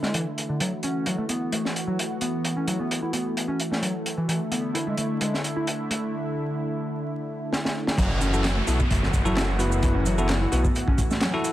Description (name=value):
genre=breakbeat, breaks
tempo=130 BPM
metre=4/4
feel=swing 53% on 16ths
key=F# minor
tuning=A4 = 440 Hz
part: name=lush unison pad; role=sustained chords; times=0.0-11.5 s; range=D3 to F#4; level=-30 LUFS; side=equal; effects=chorus, vintage 12-bit sampler grit, sidechain pumping
part: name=overdriven picked electric bass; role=riff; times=0.0-11.3 s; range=D3 to E4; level=-29 LUFS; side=equal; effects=low-pass filter, tape echo
part: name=crunchy breakbeat drum kit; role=drums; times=0.0-11.5 s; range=crash cymbal, hi-hat, kick drum, snare drum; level=-26 LUFS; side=equal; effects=high-pass filter on kick, high-pass filter on hats, high-pass filter on cymbals, high-pass filter on snare, high-pass filter on room
part: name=detuned saw bass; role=bass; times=8.0-10.7 s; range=F#1 to B1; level=-25 LUFS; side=equal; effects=tube saturation
part: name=electronic shaker and handclaps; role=drums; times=8.0-11.5 s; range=none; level=-35 LUFS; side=right 2 dB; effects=none
part: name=downlifter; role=sound effects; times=8.0-11.5 s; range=none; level=-34 LUFS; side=equal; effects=none
part: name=bell-like tine electric piano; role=stabs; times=8.3-11.5 s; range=E4 to B4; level=-29 LUFS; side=left 2 dB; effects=tape echo
room=light reverb, small room ambience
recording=vinyl crackle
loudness=-23 LUFS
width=side -14 dB against mid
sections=0.0-8.0 A section; 8.0-11.5 B section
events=filter sweep on analog synth pad 0.0-8.0; drum fill 7.5-8.0; drop 8.0-11.5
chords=0.0 E7sus4; 0.6 F#m7; 4.3 E7sus4; 8.0 F#m7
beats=0.14 | 0.60 1.06 1.52 1.98 | 2.45 2.91 3.37 3.83 | 4.29 4.75 5.21 5.68 | 6.14 6.60 7.06 7.52 | 7.98 8.45 8.91 9.37 | 9.83 10.29 10.75 11.21